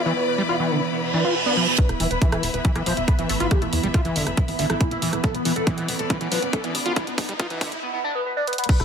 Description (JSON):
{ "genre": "psychedelic trance", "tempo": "139 BPM", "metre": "4/4", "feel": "straight", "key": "unclear", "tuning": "A4 = 440 Hz", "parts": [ { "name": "evolving wavetable pad", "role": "sustained chords", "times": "0.0-8.8 s", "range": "E3 to B3", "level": "-31 LUFS", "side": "right 5 dB", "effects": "chorus, built-in reverb, sidechain pumping" }, { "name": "overdriven acid bass", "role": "riff", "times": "0.0-7.7 s", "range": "D3 to F4", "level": "-27 LUFS", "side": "equal", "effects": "distortion, auto-pan, sidechain pumping, dub echo" }, { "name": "clear studio string section", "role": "texture", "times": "0.0-7.8 s", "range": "E4 to B5", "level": "-30 LUFS", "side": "left 4 dB", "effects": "sidechain pumping" }, { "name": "overdriven synth lead", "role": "melody", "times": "0.1-8.8 s", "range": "B3 to C5", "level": "-27 LUFS", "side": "equal", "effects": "phaser, sidechain pumping, dub echo" }, { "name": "reverse cymbal and riser", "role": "sound effects", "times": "1.1-7.8 s", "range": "none", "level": "-29 LUFS", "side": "right 4 dB", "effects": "none" }, { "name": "electronic kick drum", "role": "drums", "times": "1.8-8.8 s", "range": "none", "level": "-20 LUFS", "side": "equal", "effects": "none" }, { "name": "garage drum kit", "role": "drums", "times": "1.8-8.8 s", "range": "crash cymbal, hi-hat, rim click", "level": "-28 LUFS", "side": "equal", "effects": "none" }, { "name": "tight sequencer bass", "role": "bass", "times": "1.9-8.8 s", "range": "E1 to E2", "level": "-30 LUFS", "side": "equal", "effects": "none" }, { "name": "resonant blip pluck", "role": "second line", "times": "2.8-3.9 s", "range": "A3 to B3", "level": "-36 LUFS", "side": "left 4 dB", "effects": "phaser, sidechain pumping, high-pass filter, dub echo" } ], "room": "light reverb", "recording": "high-pass filter", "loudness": "-20 LUFS", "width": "side -7 dB against mid", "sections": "0.0-1.8 A section; 1.8-8.7 B section", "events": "filter sweep on ambient pad 0.0-1.8; reverse cymbal 1.1-1.8; build-up 1.8-8.7; riser 1.8-7.8; filter sweep on acid bass 1.8-8.7; filter sweep 1.8-8.7; drum fill 5.2-7.8, 8.5", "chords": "0.0 E5" }